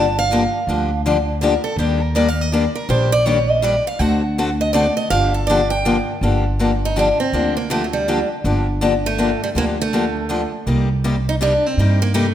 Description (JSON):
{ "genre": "acoustic string swing (jazz manouche)", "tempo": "162 BPM", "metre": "3/4", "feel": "swing 63% on 8ths", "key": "G minor", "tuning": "A4 = 443 Hz", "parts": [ { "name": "picked steel-string acoustic guitar", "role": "melody", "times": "0.0-12.3 s", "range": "F#3 to A5", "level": "-20 LUFS", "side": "right 2 dB", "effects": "none" }, { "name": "picked steel-string acoustic guitar", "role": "accompaniment", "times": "0.0-12.3 s", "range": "C3 to A4", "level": "-20 LUFS", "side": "left 3 dB", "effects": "none" }, { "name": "upright bass", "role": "bass", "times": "0.0-12.3 s", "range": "G1 to G2", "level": "-20 LUFS", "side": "equal", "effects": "none" } ], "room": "moderate recital hall reverb, RT60 1.5 s", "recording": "none", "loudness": "-16 LUFS", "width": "side -11 dB against mid", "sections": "0.0-6.2 A section; 6.2-12.3 B section", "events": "steel-string acoustic guitar solo 0.0-6.2", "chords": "0.0 Gm7; 1.8 Ebmaj7; 4.0 D7; 5.1 Gm7; 10.7 Cm7" }